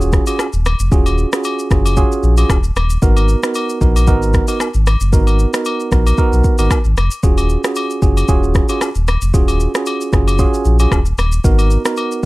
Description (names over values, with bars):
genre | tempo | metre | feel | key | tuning
afrobeats | 114 BPM | 4/4 | swing 55% on 16ths | Eb minor | A4 = 440 Hz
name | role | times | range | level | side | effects
tine electric piano | accompaniment | 0.0-12.3 s | Cb4 to Bb4 | -18 LUFS | right 3 dB | none
sub bass with octave | bass | 0.0-12.3 s | Eb1 to Cb2 | -14 LUFS | equal | none
afro-pop drum kit | drums | 0.0-12.3 s | kick drum, rim click, shaker | -16 LUFS | equal | none
agogo bells and woodblock | percussion | 0.3-12.1 s | none | -25 LUFS | left 5 dB | none
room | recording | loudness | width
little or no reverb | none | -12 LUFS | side -20 dB against mid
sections
0.0-12.3 A section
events
none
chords
0.0 Ebm11; 3.0 Abm7; 7.2 Ebm11; 11.4 Abm7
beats
0.39 | 0.92 1.44 1.97 2.50 | 3.02 3.55 4.08 4.60 | 5.13 5.66 6.18 6.71 | 7.23 7.76 8.29 8.81 | 9.34 9.87 10.39 10.92 | 11.44 11.97